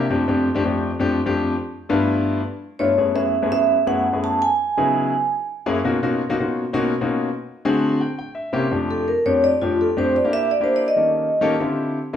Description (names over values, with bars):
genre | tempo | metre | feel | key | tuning
jazz | 167 BPM | 4/4 | straight | F major from 8.7 s | A4 = 440 Hz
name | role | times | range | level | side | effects
warm concert grand piano | accompaniment | 0.0-12.2 s | F2 to A5 | -20 LUFS | left 2 dB | none
vibraphone with medium hard mallets | melody | 2.8-5.4, 8.9-11.6 s | F4 to A5 | -18 LUFS | right 2 dB | none
room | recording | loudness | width
wet large studio reverb, RT60 0.9 s | band playing live in one room | -18 LUFS | side -9 dB against mid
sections
0.0-8.7 A section; 8.7-12.2 B section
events
grand piano fill 7.6-8.7; vibraphone solo 8.7-12.2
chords
0.1 F6; 1.5 G13; 3.0 Gbm11; 4.4 Dbm11; 5.1 Gb9; 5.8 Cbmaj9#11; 7.3 D7#11; 8.0 C7b9; 8.7 F69; 10.2 Em7b5; 10.9 Eb7#11; 11.6 Dm11